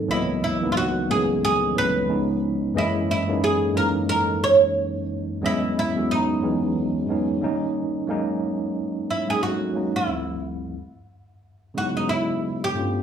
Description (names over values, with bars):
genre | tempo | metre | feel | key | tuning
R&B | 90 BPM | 4/4 | swing 60% on 16ths | C# dorian | A4 = 440 Hz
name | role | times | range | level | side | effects
tine electric piano | accompaniment | 0.0-13.0 s | C#2 to D#5 | -24 LUFS | equal | overdrive, fast stereo tremolo
oud | melody | 0.1-13.0 s | D#4 to C#5 | -23 LUFS | right 2 dB | slapback echo, plate reverb
room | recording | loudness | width
moderate studio reverb, RT60 0.7 s | studio reverb | -21 LUFS | side -8 dB against mid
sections
0.0-8.1 A section; 8.1-13.0 B section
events
none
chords
0.1 C#m11; 2.1 C#7; 2.8 F#9; 5.4 Emaj9; 7.4 D#7; 8.1 D#m7; 10.1 Dm9; 10.8 C#m9